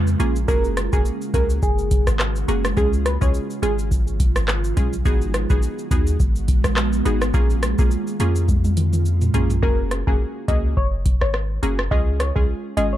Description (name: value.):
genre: dancehall.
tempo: 105 BPM.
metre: 4/4.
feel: swing 56% on 16ths.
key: unclear.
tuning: A4 = 438 Hz.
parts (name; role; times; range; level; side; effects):
ethereal airy pad; sustained chords; 0.0-9.6 s; C#3 to F#4; -29 LUFS; right 3 dB; ensemble chorus, built-in reverb, sidechain pumping.
punchy sub bass; bass; 0.0-13.0 s; F#1 to E#2; -22 LUFS; equal; none.
booming analog drum machine; drums; 0.1-12.9 s; handclaps, hi-hat, kick drum, rim click, shaker, toms; -20 LUFS; equal; none.
wavetable chord stab; accompaniment; 0.2-13.0 s; G#3 to G#4; -26 LUFS; right 1 dB; none.
soft struck synth lead; melody; 0.5-3.7, 9.6-13.0 s; G#4 to D#5; -26 LUFS; left 1 dB; chorus.
room: little or no reverb.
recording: dark, warm production.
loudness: -18 LUFS.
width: side -13 dB against mid.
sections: 0.0-9.6 A section; 9.6-13.0 B section.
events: break 0.0-0.5; drum fill 8.5-9.6.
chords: 0.5 F#add9; 2.8 C#; 5.1 G#m7; 7.3 A#m7; 9.6 F#add9; 11.9 C#.